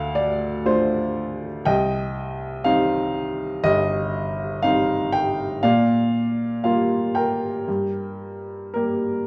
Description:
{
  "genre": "classical, lyrical solo piano",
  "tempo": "60 BPM",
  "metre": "4/4",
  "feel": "rubato",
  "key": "G minor",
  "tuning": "A4 = 440 Hz",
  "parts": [
    { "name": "clear upright piano", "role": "solo", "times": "0.0-9.3 s", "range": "G1 to G5", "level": "-23 LUFS", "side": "equal", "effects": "none" }
  ],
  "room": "light reverb",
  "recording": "dark, warm production",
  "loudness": "-22 LUFS",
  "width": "mono",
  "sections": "0.0-9.3 A section",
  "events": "none",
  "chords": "0.0 Dm; 1.7 Cm; 5.6 Gm7/Bb; 7.7 Gm"
}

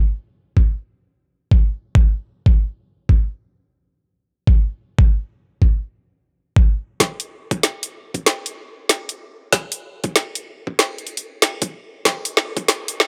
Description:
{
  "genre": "glitch hop",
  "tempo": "95 BPM",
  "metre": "4/4",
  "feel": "swing 62% on 16ths",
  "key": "none",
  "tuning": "none",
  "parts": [
    { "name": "electronic kick drum", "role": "drums", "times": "0.6-12.7 s", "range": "none", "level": "-17 LUFS", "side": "equal", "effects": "overdrive, high-pass filter on kick, high-pass filter on room" },
    { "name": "drum and bass drum kit", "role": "drums", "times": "7.0-13.1 s", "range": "hi-hat, snare drum", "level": "-20 LUFS", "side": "equal", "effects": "overdrive, high-pass filter on snare, high-pass filter on hats" }
  ],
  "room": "little or no reverb",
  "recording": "high-pass filter",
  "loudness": "-20 LUFS",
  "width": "mono",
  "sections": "0.0-7.0 A section; 7.0-13.1 B section",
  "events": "build-up 7.0-13.1; drum fill 7.0-13.1",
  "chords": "none"
}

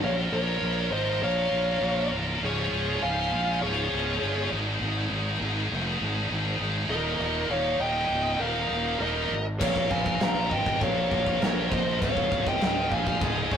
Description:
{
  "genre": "heavy metal",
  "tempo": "100 BPM",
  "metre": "4/4",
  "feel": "straight",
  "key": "unclear",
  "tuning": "A4 = 440 Hz",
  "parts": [
    { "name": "high-gain lead guitar", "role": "melody", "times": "0.0-13.6 s", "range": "Db5 to Bb5", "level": "-31 LUFS", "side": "left 1 dB", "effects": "distortion" },
    { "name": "bluesy overdriven lead guitar", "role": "second line", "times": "0.0-13.6 s", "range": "Ab4 to F5", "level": "-30 LUFS", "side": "right 1 dB", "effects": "distortion" },
    { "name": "scooped high-gain guitar", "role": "riff", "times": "0.0-13.6 s", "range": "F3 to Bb4", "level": "-31 LUFS", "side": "left 5 dB", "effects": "distortion" },
    { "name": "scooped high-gain guitar", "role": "riff", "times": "0.0-13.6 s", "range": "Db2 to F3", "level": "-34 LUFS", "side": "right 8 dB", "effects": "distortion" },
    { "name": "fuzz fingered electric bass", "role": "bass", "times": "0.0-13.6 s", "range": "C1 to Bb1", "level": "-30 LUFS", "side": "equal", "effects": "overdrive" },
    { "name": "big rock drum kit", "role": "drums", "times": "9.6-13.6 s", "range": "china cymbal, crash cymbal, kick drum, snare drum", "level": "-29 LUFS", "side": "equal", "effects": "none" }
  ],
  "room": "light reverb",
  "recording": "rough rehearsal-room recording, warm saturation",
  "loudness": "-24 LUFS",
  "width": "side -8 dB against mid",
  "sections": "0.0-13.6 A section",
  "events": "none",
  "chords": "0.0 Bbm; 2.4 Db; 4.5 Ab5; 6.9 Eb; 9.6 Bbm; 12.0 Db"
}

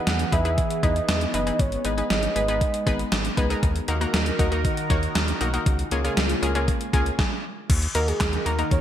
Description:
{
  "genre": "synth-pop",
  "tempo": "118 BPM",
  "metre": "4/4",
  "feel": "straight",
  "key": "unclear",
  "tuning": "A4 = 438 Hz",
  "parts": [
    { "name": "soft octave-layered synth lead", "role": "melody", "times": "0.0-3.4, 8.0-8.8 s", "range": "G#4 to F#5", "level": "-28 LUFS", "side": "right 2 dB", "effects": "chorus, tremolo, digital delay" },
    { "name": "analog pluck", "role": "accompaniment", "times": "0.0-8.8 s", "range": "A#3 to C#5", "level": "-28 LUFS", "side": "left 1 dB", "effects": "chorus" },
    { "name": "phased analog pad", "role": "sustained chords", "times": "0.0-8.8 s", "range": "C#3 to A#4", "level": "-30 LUFS", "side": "equal", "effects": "phaser, chorus" },
    { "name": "round analog bass", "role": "bass", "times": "0.1-8.8 s", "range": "F#1 to E2", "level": "-26 LUFS", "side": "equal", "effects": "none" },
    { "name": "gated 80s digital drum machine", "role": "drums", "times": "0.1-8.8 s", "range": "crash cymbal, handclaps, hi-hat, kick drum, snare drum", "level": "-24 LUFS", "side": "equal", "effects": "gated reverb, gated reverb snare, overdrive" }
  ],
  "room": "moderate lush hall reverb, RT60 1.8 s, digital ambience",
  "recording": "bright 1980s-style digital production",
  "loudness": "-21 LUFS",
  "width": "side -10 dB against mid",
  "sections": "0.0-7.7 A section; 7.7-8.8 B section",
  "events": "stop 7.2-7.7",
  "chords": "0.0 Emaj7; 1.6 G#m; 3.6 D#m; 5.7 C#6; 7.7 D#m"
}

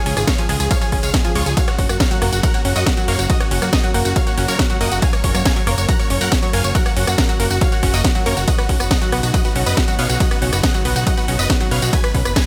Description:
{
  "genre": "uplifting trance",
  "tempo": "139 BPM",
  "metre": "4/4",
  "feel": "straight",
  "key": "unclear",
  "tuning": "A4 = 439 Hz",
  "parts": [
    { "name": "supersaw chords", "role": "melody", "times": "0.0-12.4 s", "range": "E#4 to A#5", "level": "-26 LUFS", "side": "equal", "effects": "sidechain pumping" },
    { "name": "analog pluck", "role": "second line", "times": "0.0-12.4 s", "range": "F#5 to A#6", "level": "-31 LUFS", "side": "equal", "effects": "chorus, sidechain pumping" },
    { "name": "lush unison pad", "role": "sustained chords", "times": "0.0-12.5 s", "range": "C#3 to A#4", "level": "-32 LUFS", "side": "equal", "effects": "none" },
    { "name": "analog pluck", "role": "arpeggios", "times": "0.1-12.3 s", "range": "E#3 to C#5", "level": "-28 LUFS", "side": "equal", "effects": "chorus, cassette tape, sidechain pumping, tape echo" },
    { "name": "fat analog bass", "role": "bass", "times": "0.1-12.3 s", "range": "F#1 to F#2", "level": "-23 LUFS", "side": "equal", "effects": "sidechain pumping" },
    { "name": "techno drum kit", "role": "drums", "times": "0.1-12.4 s", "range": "hi-hat, ride cymbal, rim click, snare drum, tambourine", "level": "-25 LUFS", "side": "equal", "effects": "sidechain pumping on hats, sidechain pumping on cymbals, sidechain pumping on perc" },
    { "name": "electronic kick drum", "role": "drums", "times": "0.3-12.4 s", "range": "none", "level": "-20 LUFS", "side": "equal", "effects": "none" }
  ],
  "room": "digital ambience",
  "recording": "none",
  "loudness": "-17 LUFS",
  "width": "mono",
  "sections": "0.0-12.5 A section",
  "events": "none",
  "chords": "0.0 C#; 1.6 F#; 8.5 Badd9"
}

